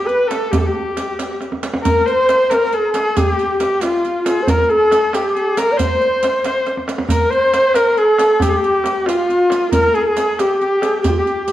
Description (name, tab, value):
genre	Persian modal ensemble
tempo	91 BPM (dotted quarters)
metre	6/8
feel	straight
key	G dastgah shur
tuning	A4 = 440 Hz
part	breathy mellow shakuhachi	melody	0.0-11.5 s	F4 to D5	-16 LUFS	equal	none
part	warm kamancheh	second line	0.0-11.5 s	F4 to C5	-20 LUFS	left 2 dB	none
part	riq	percussion	0.1-11.5 s	none	-28 LUFS	right 3 dB	none
part	tombak	percussion	0.1-11.3 s	none	-22 LUFS	right 2 dB	none
room	wet recital hall reverb, RT60 1.4 s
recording	worn, warbling old tape, cassette tape, warbly pitch drift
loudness	-14 LUFS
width	side -13 dB against mid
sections	0.0-1.8 A section; 1.8-11.5 B section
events	drum fill 1.4-1.8, 6.7-7.1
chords	none